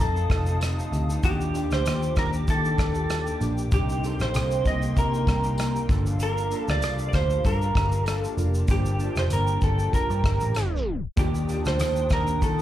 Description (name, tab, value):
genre	indie pop, bedroom pop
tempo	97 BPM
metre	4/4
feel	swing 55% on 16ths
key	unclear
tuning	A4 = 440 Hz
part	electric guitar through a small old amp	melody	0.0-12.6 s	G4 to Eb5	-28 LUFS	right 1 dB	wide subtle chorus, slapback echo
part	electric guitar through a small old amp	accompaniment	0.0-12.6 s	G2 to A4	-37 LUFS	left 3 dB	lush chorus, vibrato effect, slapback echo
part	warbly lo-fi synth keys	accompaniment	0.0-12.6 s	F3 to A5	-35 LUFS	right 4 dB	chorus, phaser, cassette tape
part	hollow soft pad	sustained chords	0.0-12.6 s	Bb3 to Eb6	-37 LUFS	left 2 dB	ensemble chorus
part	vintage muted picked electric bass	bass	0.0-12.6 s	F1 to Eb3	-25 LUFS	equal	none
part	unplugged drum kit	drums	0.2-12.6 s	hi-hat, kick drum, rim click, shaker	-26 LUFS	equal	none
part	tambourine	percussion	0.6-12.0 s	none	-44 LUFS	left 4 dB	none
room	little or no reverb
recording	live gig heard through the venue's PA, club reverb, tape stop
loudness	-22 LUFS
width	side -12 dB against mid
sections	0.0-11.2 A section; 11.2-12.6 A section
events	tape stop 10.6-11.2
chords	0.0 F7; 1.2 Ebmaj7; 3.7 Cm7; 5.9 Gm7; 11.2 Ebmaj7